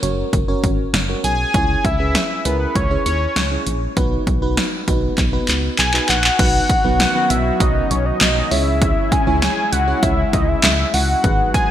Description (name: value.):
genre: synth-pop.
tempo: 99 BPM.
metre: 4/4.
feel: straight.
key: C# dorian.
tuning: A4 = 440 Hz.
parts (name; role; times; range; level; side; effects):
FM electric piano with soft pad layer; accompaniment; 0.0-11.5 s; D#3 to C#5; -24 LUFS; right 2 dB; chorus.
solid FM bass; bass; 0.0-11.5 s; F#1 to D#2; -21 LUFS; equal; none.
punchy analog drum machine; drums; 0.0-11.7 s; crash cymbal, handclaps, hi-hat, kick drum, snare drum; -19 LUFS; equal; gated reverb.
fat analog lead; melody; 1.2-11.7 s; B4 to G#5; -20 LUFS; left 1 dB; chorus, ping-pong delay.
chorused pulse-width pad; sustained chords; 6.4-11.7 s; D#3 to F#4; -25 LUFS; left 1 dB; none.
room: moderate plate reverb, RT60 3.1 s.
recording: bright 1980s-style digital production.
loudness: -15 LUFS.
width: side -11 dB against mid.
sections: 0.0-6.4 A section; 6.4-11.7 B section.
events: drum fill 5.2-6.4.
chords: 0.0 F#; 1.5 C#m; 4.0 B; 6.4 Badd9; 8.5 C#m.